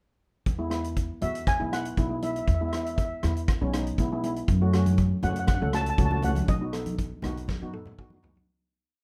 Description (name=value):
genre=calypso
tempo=120 BPM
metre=4/4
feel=straight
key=E major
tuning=A4 = 438 Hz
part: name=upright bass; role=bass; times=0.5-8.4 s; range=B1 to F#2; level=-30 LUFS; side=equal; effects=none
part: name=loose indie drum kit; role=drums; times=0.5-8.5 s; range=hi-hat, kick drum, rim click, snare drum, toms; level=-31 LUFS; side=equal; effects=none
part: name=steel pan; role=accompaniment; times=0.6-8.5 s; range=G#3 to A4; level=-34 LUFS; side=equal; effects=none
part: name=steel pan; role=melody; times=1.2-7.9 s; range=D#5 to A5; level=-34 LUFS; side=equal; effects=none
part: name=congas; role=percussion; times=4.9-8.5 s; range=none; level=-37 LUFS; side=equal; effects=none
room=light reverb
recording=none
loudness=-27 LUFS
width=mono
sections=0.5-8.5 verse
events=fade-out 6.5-8.5; drum fill 7.5-8.5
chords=0.5 E; 4.5 F#m; 6.5 B